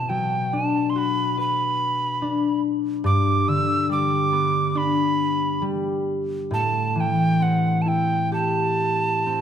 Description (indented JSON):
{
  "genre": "celtic folk, Celtic slow air",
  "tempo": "64-72 BPM",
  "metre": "4/4",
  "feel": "rubato",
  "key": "unclear",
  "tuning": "A4 = 440 Hz",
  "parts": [
    { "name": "mid whistle", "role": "melody", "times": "0.0-9.4 s", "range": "F#5 to E6", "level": "-23 LUFS", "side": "right 2 dB", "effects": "none" },
    { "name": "concert harp", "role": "accompaniment", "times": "0.0-9.4 s", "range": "G2 to B4", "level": "-22 LUFS", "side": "left 2 dB", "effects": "none" }
  ],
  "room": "moderate scoring stage reverb, RT60 1.7 s",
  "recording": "none",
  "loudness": "-20 LUFS",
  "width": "side -8 dB against mid",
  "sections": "0.0-9.4 A section",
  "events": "none",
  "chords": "0.0 Bm; 3.1 G; 6.5 Am7"
}